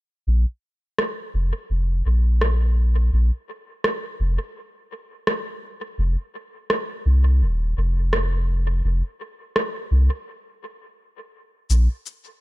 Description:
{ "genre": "ambient dub", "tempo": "84 BPM", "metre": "4/4", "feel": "swing 56% on 16ths", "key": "unclear", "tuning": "A4 = 440 Hz", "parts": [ { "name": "soft dub sub bass", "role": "bass", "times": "0.3-11.9 s", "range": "Eb1 to C2", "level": "-18 LUFS", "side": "equal", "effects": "none" }, { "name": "electronic rim click and cabasa", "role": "drums", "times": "1.0-12.2 s", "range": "none", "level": "-25 LUFS", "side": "equal", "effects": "dub echo" } ], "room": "little or no reverb", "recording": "none", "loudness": "-20 LUFS", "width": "side -18 dB against mid", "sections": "0.3-11.7 A section", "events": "stop 10.3-11.7", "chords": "none", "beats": "| 0.27 0.99 1.70 2.42 | 3.13 3.84 4.56 5.27 | 5.99 6.70 7.42 8.13 | 8.84 9.56 10.27 10.99 | 11.70" }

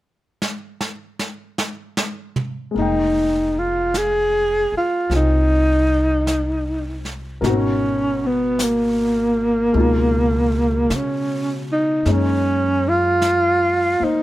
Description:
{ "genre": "jazz ballad", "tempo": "52 BPM", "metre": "4/4", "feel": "swing 67% on 8ths", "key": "F minor", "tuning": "A4 = 441 Hz", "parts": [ { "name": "jazz brush drum kit", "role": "drums", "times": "0.4-14.2 s", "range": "brushed snare drum, hi-hat, snare drum, toms", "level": "-27 LUFS", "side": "right 1 dB", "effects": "none" }, { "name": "warm baby grand piano", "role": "accompaniment", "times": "2.7-14.2 s", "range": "Cb3 to G5", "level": "-26 LUFS", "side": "left 4 dB", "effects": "none" }, { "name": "breathy tenor saxophone", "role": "melody", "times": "2.8-14.2 s", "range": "Bb3 to Ab4", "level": "-18 LUFS", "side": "equal", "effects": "none" }, { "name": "upright bass", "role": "bass", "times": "2.8-14.0 s", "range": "F1 to Db3", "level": "-23 LUFS", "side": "equal", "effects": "none" } ], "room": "light reverb", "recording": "none", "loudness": "-17 LUFS", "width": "side -16 dB against mid", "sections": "0.0-2.8 A section; 2.8-14.2 B section", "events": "drum fill 0.4-2.8", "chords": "0.0 N.C.; 2.8 Fm11; 7.4 Abm9; 9.8 Db9; 12.1 Gb69", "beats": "0.43 1.59 | 2.76 3.94 5.11 6.28 | 7.44 8.60 9.75 10.91 | 12.07 13.23" }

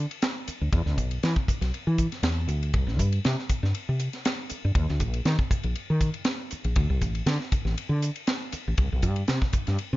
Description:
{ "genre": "electric jazz fusion", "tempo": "119 BPM", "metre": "4/4", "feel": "straight", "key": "C major", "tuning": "A4 = 440 Hz", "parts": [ { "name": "woody fretless electric bass", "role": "bass", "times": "0.0-10.0 s", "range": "A1 to E3", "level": "-25 LUFS", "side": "equal", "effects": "none" }, { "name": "crisp fusion drum kit", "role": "drums", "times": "0.1-9.9 s", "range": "hi-hat, kick drum, ride cymbal, snare drum", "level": "-28 LUFS", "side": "equal", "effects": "none" } ], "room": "little or no reverb", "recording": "nothing above 7.4 kHz", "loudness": "-24 LUFS", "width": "side -17 dB against mid", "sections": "0.0-10.0 A section", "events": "none", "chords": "none", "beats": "0.23 | 0.73 1.23 1.74 2.24 | 2.74 3.25 3.75 4.25 | 4.76 5.26 5.76 6.27 | 6.77 7.27 7.78 8.28 | 8.78 9.29 9.79" }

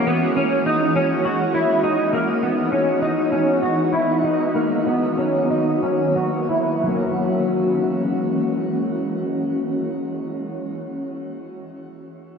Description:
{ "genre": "dream pop", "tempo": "87-102 BPM", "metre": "4/4", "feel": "straight", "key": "F# mixolydian", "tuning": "A4 = 438 Hz", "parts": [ { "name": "shimmering ambient pad", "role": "sustained chords", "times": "0.0-10.4 s", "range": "D#3 to F#4", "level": "-22 LUFS", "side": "equal", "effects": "chorus, built-in reverb, low-pass filter" }, { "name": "electric guitar at the edge of break-up", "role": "arpeggios", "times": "0.0-11.1 s", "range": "F#3 to F#4", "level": "-21 LUFS", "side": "left 1 dB", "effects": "ensemble chorus, low-pass filter, digital delay" } ], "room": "moderate shimmer reverb, RT60 5.5 s", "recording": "none", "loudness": "-18 LUFS", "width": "side -6 dB against mid", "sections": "0.0-6.8 A section; 6.8-9.6 B section", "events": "filter sweep 0.0-6.8; slowing down 1.8-6.8", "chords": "0.0 Emaj9; 4.2 Bmaj7; 6.8 F#9", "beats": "0.07 0.66 1.25 | 1.83 2.42 3.02 3.62 | 4.24 4.86 5.50 6.16 | 6.84 7.53 8.23 8.92" }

